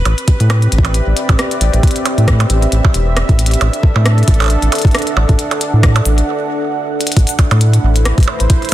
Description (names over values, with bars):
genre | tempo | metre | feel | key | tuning
IDM | 135 BPM | 4/4 | swing 56% on 16ths | A dorian | A4 = 440 Hz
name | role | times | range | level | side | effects
round analog bass | bass | 0.0-8.5 s | E1 to A2 | -12 LUFS | equal | none
bubbling stepped-filter texture | texture | 0.0-8.7 s | B4 to B5 | -30 LUFS | right 2 dB | chorus, built-in reverb
warm analog pad | sustained chords | 0.1-8.7 s | A3 to F#5 | -19 LUFS | right 1 dB | chorus
glitchy drum kit | drums | 0.1-8.7 s | hi-hat, percussion blips, rim click, shaker | -19 LUFS | right 2 dB | overdrive, studio reverb, tape echo
electronic kick drum | drums | 0.3-8.6 s | none | -11 LUFS | equal | overdrive, studio reverb
room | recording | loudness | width
digital ambience | dense, heavily limited modern master | -10 LUFS | side -14 dB against mid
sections
0.0-7.2 A section; 7.2-8.7 B section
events
break 6.3-7.2; drum fill 6.9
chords
0.1 Cmaj9/A; 3.6 D13/A; 7.2 Amadd9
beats
| 0.06 0.50 0.94 1.39 | 1.83 2.28 2.72 3.17 | 3.61 4.05 4.50 4.94 | 5.39 5.83 6.28 6.72 | 7.17 7.61 8.05 8.50